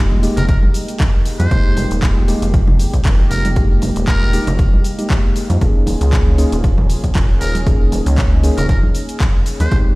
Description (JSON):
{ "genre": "deep house", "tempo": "117 BPM", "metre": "4/4", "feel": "swing 55% on 16ths", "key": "unclear", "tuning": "A4 = 441 Hz", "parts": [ { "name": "dark analog pad", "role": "sustained chords", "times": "0.0-10.0 s", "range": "Ab3 to Ab4", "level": "-28 LUFS", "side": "equal", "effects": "chorus, sidechain pumping" }, { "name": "mellow tine electric piano", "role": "stabs", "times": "0.0-10.0 s", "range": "Ab3 to Ab4", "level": "-23 LUFS", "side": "equal", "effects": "sidechain pumping, digital delay" }, { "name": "rubbery square bass", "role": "bass", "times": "0.0-9.8 s", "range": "Eb1 to F2", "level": "-17 LUFS", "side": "equal", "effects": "sidechain pumping" }, { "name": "congas", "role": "percussion", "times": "0.1-9.7 s", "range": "none", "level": "-26 LUFS", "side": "right 2 dB", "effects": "none" }, { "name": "house drum kit", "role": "drums", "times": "0.2-9.8 s", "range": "handclaps, hi-hat, shaker", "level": "-27 LUFS", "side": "equal", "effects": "overdrive, small room ambience" }, { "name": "trumpet with metal mute", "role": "melody", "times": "0.4-9.8 s", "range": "Bb4 to C5", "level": "-27 LUFS", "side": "equal", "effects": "digital delay" }, { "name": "electronic kick drum", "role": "drums", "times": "0.5-9.8 s", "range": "none", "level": "-14 LUFS", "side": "equal", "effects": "small room ambience" } ], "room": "digital ambience", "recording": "played on a big sound system in a bare room, stone room reverb", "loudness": "-12 LUFS", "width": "side -22 dB against mid", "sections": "0.0-10.0 A section", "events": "none", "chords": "0.0 Fm11; 5.6 Eb7sus4" }